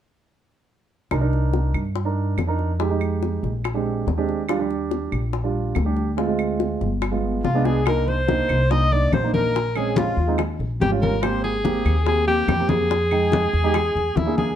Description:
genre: Afro-Cuban jazz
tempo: 142 BPM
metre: 4/4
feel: straight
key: C minor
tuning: A4 = 440 Hz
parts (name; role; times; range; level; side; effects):
- dark grand piano; accompaniment; 1.1-14.5 s; G3 to G5; -25 LUFS; right 5 dB; none
- upright bass; bass; 1.1-14.6 s; G1 to G2; -23 LUFS; equal; none
- bongos; percussion; 1.1-14.6 s; none; -29 LUFS; left 8 dB; none
- claves; percussion; 1.1-14.0 s; none; -35 LUFS; right 4 dB; none
- breathy alto saxophone; melody; 7.4-14.6 s; E4 to Eb5; -23 LUFS; equal; plate reverb
- breathy trumpet; second line; 7.4-14.6 s; E4 to Eb5; -29 LUFS; left 5 dB; none
- congas; percussion; 7.9-14.6 s; none; -26 LUFS; left 2 dB; none
room: light reverb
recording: dark, warm production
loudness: -19 LUFS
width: side -10 dB against mid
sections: 1.1-7.9 A section; 7.9-14.6 B section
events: drum fill 7.7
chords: 1.1 Cm9; 2.8 Fm9; 3.6 Bb13; 4.5 Ebmaj9; 6.2 Dm7b5; 7.0 G7b9; 7.9 Cm7; 9.5 Bbm7; 10.4 Eb7; 11.2 Abmaj7; 12.9 Fm7; 13.8 E7#11

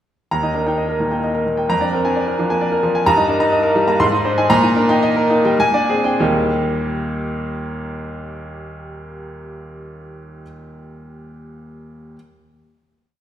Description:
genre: classical, virtuoso piano study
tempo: 97-133 BPM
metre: 3/4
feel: rubato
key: Eb major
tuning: A4 = 440 Hz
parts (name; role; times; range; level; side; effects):
- clear baby grand piano; solo; 0.3-12.2 s; Eb2 to C6; -17 LUFS; equal; none
room: wet recital hall reverb, RT60 1.6 s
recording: recorded in a church or concert hall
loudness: -15 LUFS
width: side -10 dB against mid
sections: 0.3-6.2 A section; 6.2-9.9 final chord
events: slowing down 2.4-6.2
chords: 0.3 Eb; 1.7 Bb7/F; 3.1 Eb/G; 4.0 Ab; 4.5 Eb/Bb; 5.6 Bb13; 6.2 Eb

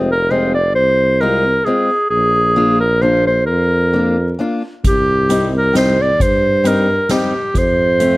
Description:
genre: alpine folk, alpine dance band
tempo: 133 BPM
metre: 3/4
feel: swing 55% on 8ths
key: unclear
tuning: A4 = 440 Hz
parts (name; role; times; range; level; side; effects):
- fingerpicked acoustic archtop guitar; accompaniment; 0.0-8.2 s; G3 to F4; -19 LUFS; left 2 dB; none
- warm tuba; bass; 0.0-8.2 s; F1 to G2; -18 LUFS; equal; none
- clear clarinet; melody; 0.1-8.2 s; G4 to D5; -14 LUFS; equal; none
- soft-mallet drum kit; drums; 4.8-8.1 s; hi-hat, kick drum, snare drum; -20 LUFS; equal; none
room: moderate spring reverb, RT60 1.2 s, studio ambience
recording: vinyl crackle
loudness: -12 LUFS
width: side -20 dB against mid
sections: 0.0-8.2 A section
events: none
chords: 0.0 Fm; 2.1 Bb; 4.8 Cm7; 7.5 F

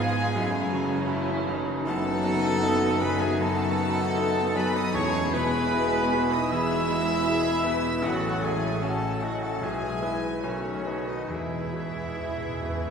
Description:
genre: classical, romantic movement for piano and orchestra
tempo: 76 BPM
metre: 4/4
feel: uneven beats, rubato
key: E major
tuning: A4 = 441 Hz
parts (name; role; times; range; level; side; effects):
- clear baby grand piano; melody; 0.0-12.9 s; A1 to B4; -30 LUFS; left 2 dB; none
- warm symphonic violin section; melody; 0.0-12.9 s; B3 to F4; -37 LUFS; left 2 dB; none
- bright oboe; second line; 0.0-12.9 s; C#4 to E5; -37 LUFS; equal; none
- mellow hollow silver concert flute; second line; 0.0-12.9 s; A4 to B5; -35 LUFS; left 1 dB; none
- warm symphonic violin section; second line; 0.0-12.9 s; C#5 to E6; -33 LUFS; left 2 dB; none
- dark symphonic viola section; accompaniment; 0.0-12.9 s; D#3 to C#4; -34 LUFS; right 1 dB; none
- clear trombone section; sustained chords; 0.0-12.9 s; B2 to B3; -37 LUFS; right 2 dB; none
- mellow French horn section; sustained chords; 0.0-12.9 s; C#3 to E4; -34 LUFS; left 1 dB; none
- clear trumpet; stabs; 0.0-12.9 s; C#4 to E5; -33 LUFS; right 1 dB; none
- rich symphonic double bass section; bass; 0.0-12.9 s; E1 to E2; -34 LUFS; right 2 dB; none
- warm symphonic cello section; bass; 0.0-12.9 s; D#4 to B4; -35 LUFS; equal; none
- timpani; percussion; 5.0-12.9 s; E2 to B2; -40 LUFS; right 1 dB; none
room: wet concert hall reverb, RT60 2.4 s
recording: heard from further back in the room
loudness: -24 LUFS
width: side -6 dB against mid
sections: 0.0-12.9 A section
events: timpani fill 11.3-12.9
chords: 0.4 F#m7; 1.9 B7/F#; 4.9 E; 8.1 F#m/A; 9.6 E/B; 10.4 B9; 11.3 E

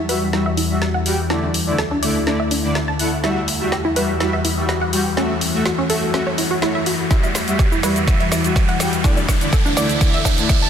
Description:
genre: progressive house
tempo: 124 BPM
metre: 4/4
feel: straight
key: E minor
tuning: A4 = 440 Hz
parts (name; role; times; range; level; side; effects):
- evolving wavetable pad; sustained chords; 0.0-10.7 s; D2 to F#4; -23 LUFS; left 2 dB; chorus, built-in reverb, phaser, sidechain pumping
- wide unison pluck; arpeggios; 0.0-10.7 s; C#4 to A5; -24 LUFS; right 1 dB; sidechain pumping, dub echo
- riser; sound effects; 1.0-10.7 s; none; -27 LUFS; right 3 dB; none
- soft supersaw; stabs; 0.1-10.5 s; D3 to G5; -22 LUFS; equal; cassette tape, sidechain pumping, dub echo
- deep house drum kit; drums; 0.1-10.7 s; hi-hat, shaker, snare drum; -24 LUFS; equal; soft clipping on snare
- electronic kick drum; drums; 7.1-10.6 s; none; -17 LUFS; equal; none
room: moderate lush hall reverb, RT60 1.9 s, digital ambience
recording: dense, heavily limited modern master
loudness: -16 LUFS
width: side -8 dB against mid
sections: 0.0-10.7 A section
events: build-up 0.0-10.7; drum fill 0.0-10.7; filter sweep on synth pluck 0.0-10.7; riser 1.0-10.7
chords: 0.0 Emadd9; 1.3 Dsus2; 3.2 Emadd9; 5.2 F#m7; 7.1 Emadd9; 9.0 Dsus2

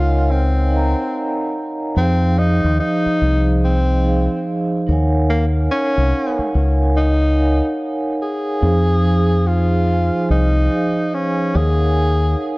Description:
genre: hip hop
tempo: 72 BPM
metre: 4/4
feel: swing 62% on 16ths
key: unclear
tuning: A4 = 439 Hz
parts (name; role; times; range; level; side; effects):
- breathy tenor saxophone; melody; 0.0-12.6 s; Bb3 to Ab4; -21 LUFS; left 1 dB; low-pass filter, tape echo
- vibraphone with soft mallets; accompaniment; 0.0-12.6 s; F3 to Bb5; -20 LUFS; right 2 dB; low-pass filter
- deep dub fingered electric bass; bass; 0.0-12.3 s; C2 to F2; -16 LUFS; equal; none
room: moderate spring reverb, RT60 2.2 s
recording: dark, warm production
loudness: -15 LUFS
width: side -22 dB against mid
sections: 0.0-8.6 A section; 8.6-12.6 B section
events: none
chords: 0.0 Ebm11; 2.0 Fm7; 4.9 Ebm11; 8.6 Fm7; 11.5 Ebm11

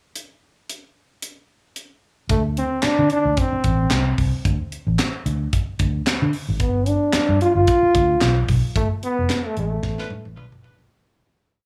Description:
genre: funk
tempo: 112 BPM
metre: 4/4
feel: swing 56% on 16ths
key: D dorian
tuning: A4 = 440 Hz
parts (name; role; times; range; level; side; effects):
- crisp fusion drum kit; drums; 0.2-10.9 s; handclaps, hi-hat, kick drum, snare drum, toms; -26 LUFS; equal; none
- clear trombone; melody; 2.3-10.3 s; A3 to F4; -22 LUFS; equal; plate reverb
- vintage muted fingered electric bass; bass; 2.3-10.9 s; F1 to D3; -24 LUFS; equal; none
- warm horn section; second line; 10.0-10.8 s; D4 to B4; -40 LUFS; equal; none
room: light reverb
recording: studio ambience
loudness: -20 LUFS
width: mono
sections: 0.2-2.3 pickup bar; 2.3-10.9 A section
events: fade-out 8.8-10.9; band accent 8.8-10.9; drum fill 9.8-10.9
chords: 0.2 N.C.; 2.3 D5; 6.6 G9

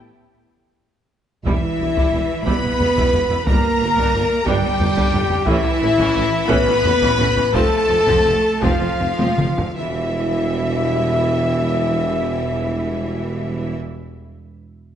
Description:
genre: cinematic, epic orchestral film score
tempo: 51-60 BPM (dotted quarters)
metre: 6/8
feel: straight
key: unclear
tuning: A4 = 440 Hz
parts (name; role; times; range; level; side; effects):
- rich symphonic violin section; melody; 1.4-13.8 s; E5 to B5; -30 LUFS; left 4 dB; none
- rich symphonic violin section; second line; 1.5-13.7 s; E5 to B5; -27 LUFS; left 3 dB; none
- rich symphonic viola section; accompaniment; 1.5-13.8 s; E3 to E4; -28 LUFS; right 2 dB; none
- dark French horn section; sustained chords; 1.5-13.8 s; E4 to B4; -22 LUFS; left 3 dB; none
- mellow trumpet section; stabs; 1.5-13.8 s; E4 to E5; -24 LUFS; equal; none
- clear symphonic double bass section; bass; 1.5-13.8 s; E1 to A1; -26 LUFS; right 3 dB; none
- rich symphonic cello section; bass; 1.5-13.7 s; E3 to B3; -26 LUFS; right 4 dB; none
- warm tuba; bass; 1.5-13.8 s; E1 to A1; -26 LUFS; right 3 dB; none
- taiko ensemble; drums; 1.5-9.9 s; none; -22 LUFS; equal; none
room: moderate scoring stage reverb, RT60 1.8 s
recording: nothing above 10.8 kHz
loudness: -16 LUFS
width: side -9 dB against mid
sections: 0.0-1.5 A section; 1.5-9.8 B section; 9.8-14.5 C section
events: break 0.0-1.5; drum fill 1.0-1.5, 9.2-9.8; slowing down 4.5-9.8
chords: 0.0 N.C.; 1.5 Em; 3.5 Gm; 5.5 A; 7.5 F; 9.8 Em

